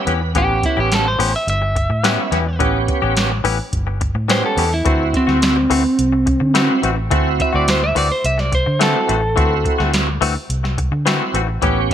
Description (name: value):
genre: straight-eighth soul blues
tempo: 106 BPM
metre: 4/4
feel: straight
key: unclear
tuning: A4 = 437 Hz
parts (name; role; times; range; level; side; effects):
- bright tonewheel organ; accompaniment; 0.0-11.9 s; B3 to B4; -23 LUFS; right 6 dB; overdrive, chorus vibrato, slow rotary speaker
- direct-recorded clean electric guitar; stabs; 0.1-11.9 s; E3 to G4; -22 LUFS; left 8 dB; analog delay
- vintage muted fingered electric bass; bass; 0.1-11.9 s; G1 to D3; -20 LUFS; equal; none
- soft vintage rhythm box; drums; 0.1-11.9 s; hi-hat, kick drum, snare drum; -21 LUFS; equal; none
- lightly driven lead guitar; melody; 0.4-9.9 s; C4 to E5; -18 LUFS; right 1 dB; none
room: light reverb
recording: none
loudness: -15 LUFS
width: side -10 dB against mid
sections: 0.0-11.9 A section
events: tonewheel organ fill 0.0-0.4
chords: 0.0 A9; 4.9 D9